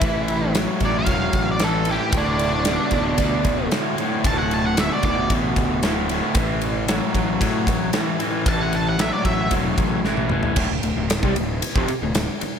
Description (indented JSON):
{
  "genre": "classic rock",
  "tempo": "114 BPM",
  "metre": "4/4",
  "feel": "straight",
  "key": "D major",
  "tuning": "A4 = 439 Hz",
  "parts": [
    { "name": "octave-fuzz lead guitar", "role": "melody", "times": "0.0-5.3, 8.5-9.5 s", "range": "D4 to A5", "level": "-26 LUFS", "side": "right 1 dB", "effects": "distortion, tape echo" },
    { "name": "overdriven electric guitar", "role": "riff", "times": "0.0-12.5 s", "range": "D2 to G3", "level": "-25 LUFS", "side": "left 10 dB", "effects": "none" },
    { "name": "raw garage guitar", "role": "riff", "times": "0.0-12.4 s", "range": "D2 to G3", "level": "-26 LUFS", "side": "right 10 dB", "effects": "overdrive" },
    { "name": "fuzz fingered electric bass", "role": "bass", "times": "0.0-12.5 s", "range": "D1 to A2", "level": "-26 LUFS", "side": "equal", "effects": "overdrive" },
    { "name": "huge arena drum kit", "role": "drums", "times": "0.0-12.5 s", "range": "crash cymbal, kick drum, ride cymbal, snare drum, toms", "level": "-23 LUFS", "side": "equal", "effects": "none" }
  ],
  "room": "light reverb",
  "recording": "none",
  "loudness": "-18 LUFS",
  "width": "side -7 dB against mid",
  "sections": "0.0-10.6 A section; 10.6-12.6 B section",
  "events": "lead electric guitar solo 0.0-10.6; drum fill 10.1-10.6",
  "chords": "0.0 A5; 2.1 D5; 6.4 A5; 10.6 D5"
}